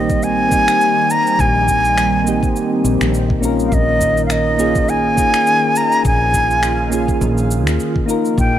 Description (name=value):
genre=sunset chillout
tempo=103 BPM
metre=4/4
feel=swing 56% on 16ths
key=unclear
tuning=A4 = 437 Hz
part: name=breathy bright concert flute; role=melody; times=0.0-8.6 s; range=Eb5 to Bb5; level=-16 LUFS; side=equal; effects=digital delay
part: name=soft electric-piano-like synth keys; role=accompaniment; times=0.0-8.6 s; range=G3 to Bb4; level=-19 LUFS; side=moving between left 5 dB and right 3 dB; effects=chorus, auto-pan, digital delay
part: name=airy breathy pad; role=sustained chords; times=0.0-8.6 s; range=Eb3 to F4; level=-23 LUFS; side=right 1 dB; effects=chorus, phaser
part: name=woody fretless electric bass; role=bass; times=0.0-8.6 s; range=F1 to Eb2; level=-20 LUFS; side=equal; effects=none
part: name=electronic cabasa and finger snaps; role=drums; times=0.1-8.5 s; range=none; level=-26 LUFS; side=equal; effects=none
part: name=electronic kick drum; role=drums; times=0.1-8.5 s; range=none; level=-20 LUFS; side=equal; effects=none
room=light reverb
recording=rough home demo mix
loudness=-13 LUFS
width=side -11 dB against mid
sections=0.0-8.6 A section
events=none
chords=0.0 Abmaj7; 3.7 Eb9sus4; 8.1 Db69 (rootless)